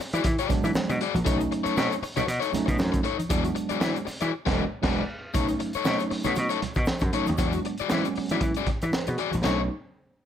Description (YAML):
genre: funk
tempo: 118 BPM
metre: 4/4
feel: swing 56% on 16ths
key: B mixolydian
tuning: A4 = 440 Hz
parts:
  - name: overdriven electric guitar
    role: accompaniment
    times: 0.0-9.6 s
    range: D#4 to D5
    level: -29 LUFS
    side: left 8 dB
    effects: none
  - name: gritty slap bass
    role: bass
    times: 0.0-9.7 s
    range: E1 to E3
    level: -28 LUFS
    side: equal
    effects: overdrive
  - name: crunchy breakbeat drum kit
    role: drums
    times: 0.0-9.6 s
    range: crash cymbal, hi-hat, kick drum, ride cymbal, snare drum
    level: -29 LUFS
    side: equal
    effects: none
  - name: egg shaker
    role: percussion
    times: 0.0-9.7 s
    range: none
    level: -49 LUFS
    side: left 6 dB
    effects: none
  - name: congas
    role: percussion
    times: 0.2-9.7 s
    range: none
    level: -36 LUFS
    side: right 2 dB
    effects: none
  - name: tine electric piano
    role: stabs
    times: 0.5-9.7 s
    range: F#3 to B4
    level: -30 LUFS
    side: right 3 dB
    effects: none
room: light reverb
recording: none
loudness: -24 LUFS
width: side -9 dB against mid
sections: 0.0-5.3 A section; 5.3-9.4 B section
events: band accent 4.3-5.3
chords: 0.0 E9; 1.3 B9; 3.3 E9; 5.3 B9; 7.4 E9; 9.4 B9